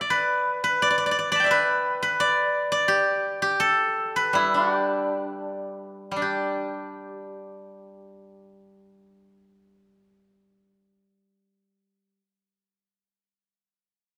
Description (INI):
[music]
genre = chinese traditional, Chinese solo plucked strings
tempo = 53-88 BPM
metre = 2/4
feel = rubato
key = G gong mode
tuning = A4 = 440 Hz
[part]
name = steel-string zither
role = solo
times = 0.0-12.2 s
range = G3 to B5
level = -24 LUFS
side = equal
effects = none
[sound]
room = moderate concert hall reverb, RT60 2.0 s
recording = none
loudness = -24 LUFS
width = mono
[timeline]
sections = 0.0-6.2 A section; 6.2-10.6 B section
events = slowing down 2.9-6.2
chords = none